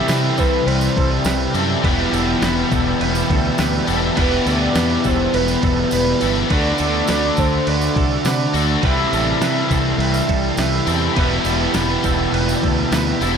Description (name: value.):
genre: rock, shoegaze and dream pop.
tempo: 103 BPM.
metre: 4/4.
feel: straight.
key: unclear.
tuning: A4 = 442 Hz.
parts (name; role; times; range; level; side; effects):
mellow horn-like synth lead; melody; 0.0-11.0 s; G4 to E5; -24 LUFS; right 1 dB; chorus, phaser, analog delay.
ensemble organ-string; sustained chords; 0.0-13.4 s; A4 to F#6; -29 LUFS; equal; ensemble chorus.
twangy electric guitar; arpeggios; 0.0-13.4 s; A4 to B4; -29 LUFS; right 9 dB; analog chorus, analog delay.
crunchy overdriven guitar; riff; 0.0-13.4 s; E2 to G4; -21 LUFS; left 11 dB; analog chorus.
overdriven electric guitar; riff; 0.0-13.4 s; E2 to F#4; -22 LUFS; right 11 dB; reverse reverb.
fingered electric bass; bass; 0.1-13.4 s; E1 to C3; -22 LUFS; equal; none.
clean 12-bit digital drum machine; drums; 0.1-13.4 s; crash cymbal, kick drum, snare drum; -22 LUFS; equal; none.
tambourine; percussion; 0.1-13.4 s; none; -35 LUFS; right 12 dB; none.
room: light reverb, digital ambience.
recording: none.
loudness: -15 LUFS.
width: side -7 dB against mid.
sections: 0.0-13.4 A section.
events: kick and snare drop out 5.9-6.5.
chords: 0.0 C6; 1.8 Em; 6.5 D; 8.8 C6; 11.2 Em.